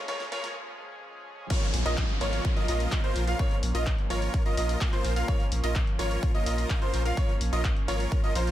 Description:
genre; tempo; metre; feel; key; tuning
EDM, festival progressive house; 127 BPM; 4/4; straight; Bb minor; A4 = 441 Hz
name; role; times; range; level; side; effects
lush unison pad; sustained chords; 0.0-8.5 s; F2 to Ab4; -38 LUFS; equal; chorus, sidechain pumping
riser and downlifter; sound effects; 0.0-5.3 s; none; -38 LUFS; left 1 dB; none
bright baby grand piano; arpeggios; 0.1-8.5 s; C5 to F5; -35 LUFS; right 1 dB; sidechain pumping, dub echo
dense compressed supersaw; riff; 0.1-8.5 s; F4 to F5; -34 LUFS; equal; sidechain pumping, dub echo
big-room dance drum kit; drums; 0.1-8.5 s; crash cymbal, handclaps, hi-hat, snare drum; -37 LUFS; left 2 dB; none
electronic kick drum; drums; 1.5-8.2 s; none; -27 LUFS; equal; none
saturated sub bass; bass; 1.7-8.5 s; Ab1 to Bb1; -29 LUFS; equal; sidechain pumping
room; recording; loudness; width
digital ambience; high-pass filter; -25 LUFS; side -13 dB against mid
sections
0.0-1.5 A section; 1.5-8.5 B section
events
build-up 0.0-1.5; drum fill 0.0-0.6; riser 0.0-0.6; break 0.6-1.5; drop 1.5-8.5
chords
0.0 Db/F; 1.5 Bbm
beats
0.09 0.56 1.03 | 1.50 1.98 2.45 2.92 | 3.39 3.87 4.34 4.81 | 5.28 5.76 6.23 6.70 | 7.17 7.64 8.12

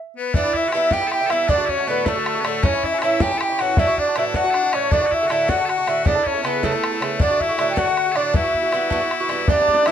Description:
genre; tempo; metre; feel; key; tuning
celtic folk, Celtic jig; 105 BPM (dotted quarters); 6/8; straight; E dorian; A4 = 442 Hz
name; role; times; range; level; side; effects
bright reedy baroque flute; melody; 0.2-9.9 s; A4 to G5; -20 LUFS; equal; plate reverb
loud bright bagpipes; second line; 0.2-9.9 s; A3 to A4; -24 LUFS; left 5 dB; none
Irish bouzouki; accompaniment; 0.3-9.9 s; G2 to A4; -24 LUFS; right 5 dB; none
bodhran; percussion; 0.3-9.9 s; none; -22 LUFS; left 1 dB; none
cimbalom; second line; 9.5-9.9 s; D4 to E4; -23 LUFS; equal; none
room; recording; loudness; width
moderate studio reverb, RT60 0.5 s; dark, warm production; -17 LUFS; side -9 dB against mid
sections
0.3-9.5 A section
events
none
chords
0.3 Em; 1.5 D; 2.6 A; 3.8 Dadd9; 4.9 D; 6.1 Aadd9/C#; 7.2 D; 8.3 Emadd9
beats
| 0.34 0.92 | 1.49 2.06 | 2.63 3.20 | 3.78 4.35 | 4.92 5.49 | 6.06 6.63 | 7.20 7.77 | 8.34 8.91 | 9.48

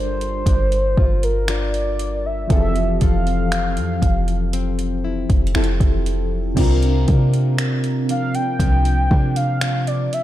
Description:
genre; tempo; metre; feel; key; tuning
contemporary R&B; 59 BPM; 4/4; straight; unclear; A4 = 441 Hz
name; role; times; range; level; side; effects
mellow horn-like synth lead; melody; 0.0-10.2 s; Bb4 to G5; -24 LUFS; equal; chorus, tape echo
soft electric-piano-like synth keys; accompaniment; 0.0-10.2 s; C3 to Bb4; -26 LUFS; right 2 dB; chorus, phaser
nylon-string guitar; arpeggios; 0.0-10.2 s; C3 to Bb4; -26 LUFS; left 6 dB; none
warm 808-style bass; bass; 0.0-10.1 s; F1 to C3; -20 LUFS; equal; none
smooth R&B drum kit; drums; 0.2-10.2 s; crash cymbal, finger snaps, hi-hat, kick drum; -20 LUFS; equal; none
room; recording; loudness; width
little or no reverb; dark, warm production; -16 LUFS; side -13 dB against mid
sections
0.0-6.6 A section; 6.6-10.2 B section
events
none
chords
0.0 Gm7; 2.5 Fmaj7; 6.6 C9sus4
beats
0.47 1.48 | 2.50 3.52 4.54 5.55 | 6.57 7.59 8.60 9.62

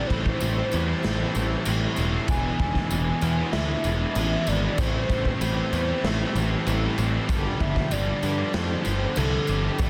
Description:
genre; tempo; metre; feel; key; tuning
rock, shoegaze and dream pop; 96 BPM; 4/4; straight; A minor; A4 = 438 Hz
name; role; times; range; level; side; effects
pure sine lead; melody; 0.0-9.9 s; A4 to G#5; -34 LUFS; equal; chorus, digital delay
crunchy overdriven guitar; riff; 0.0-9.9 s; E2 to G4; -35 LUFS; equal; analog chorus
distorted electric guitar; riff; 0.0-9.9 s; E2 to A3; -36 LUFS; equal; overdrive
electric guitar at the edge of break-up; riff; 0.0-9.9 s; E2 to A4; -34 LUFS; equal; reverse reverb
fuzz picked electric bass; bass; 0.1-9.9 s; E1 to G2; -29 LUFS; equal; overdrive
raw garage drum kit; drums; 0.1-9.9 s; crash cymbal, kick drum, snare drum; -31 LUFS; equal; none
tambourine; percussion; 0.4-9.9 s; none; -43 LUFS; equal; none
room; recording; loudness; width
small room ambience; dense, heavily limited modern master; -25 LUFS; mono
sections
0.0-9.9 A section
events
none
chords
0.0 Am7; 2.3 E7; 4.8 Am7; 7.3 G9sus4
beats
0.41 1.03 1.66 | 2.29 2.91 3.54 4.16 | 4.79 5.42 6.04 6.67 | 7.30 7.92 8.55 9.18 | 9.80

